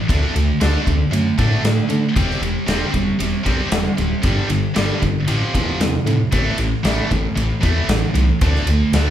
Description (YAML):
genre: hard rock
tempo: 115 BPM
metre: 4/4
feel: straight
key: unclear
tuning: A4 = 440 Hz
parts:
  - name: high-gain distorted guitar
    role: riff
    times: 0.0-9.1 s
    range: F2 to D4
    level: -20 LUFS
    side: right 1 dB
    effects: distortion
  - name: smooth synth bass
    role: bass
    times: 0.1-9.1 s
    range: D1 to D3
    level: -20 LUFS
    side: equal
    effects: none
  - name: big rock drum kit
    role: drums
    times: 0.1-9.1 s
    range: kick drum, ride cymbal, snare drum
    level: -22 LUFS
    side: equal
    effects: none
room: moderate large studio reverb, RT60 0.9 s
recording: band playing live in one room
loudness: -16 LUFS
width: side -11 dB against mid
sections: 0.0-9.1 A section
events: none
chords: 0.1 D5; 2.2 C/E; 4.2 G5; 5.3 F/A; 6.3 A5; 8.4 D5